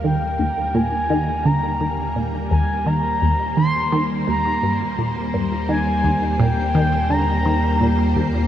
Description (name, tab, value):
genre	ambient, sequencer-driven space music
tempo	85 BPM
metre	4/4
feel	straight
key	Eb major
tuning	A4 = 440 Hz
part	expressive synth lead	melody	0.0-8.2 s	G5 to C6	-23 LUFS	equal	chorus, tape echo
part	string machine, full ensemble	sustained chords	0.0-8.5 s	G3 to C5	-25 LUFS	equal	ensemble chorus
part	resonant blip pluck	riff	0.0-8.3 s	Eb2 to Eb3	-21 LUFS	equal	chorus, phaser, cassette tape, tape echo
part	round analog bass	bass	0.0-8.5 s	Eb2	-26 LUFS	equal	none
room	wet huge ambient reverb, RT60 7.5 s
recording	none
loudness	-17 LUFS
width	side -10 dB against mid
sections	0.0-8.5 A section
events	fade-in on string machine 0.0-8.5; fade-in on analog synth bass 0.0-8.5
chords	0.0 Eb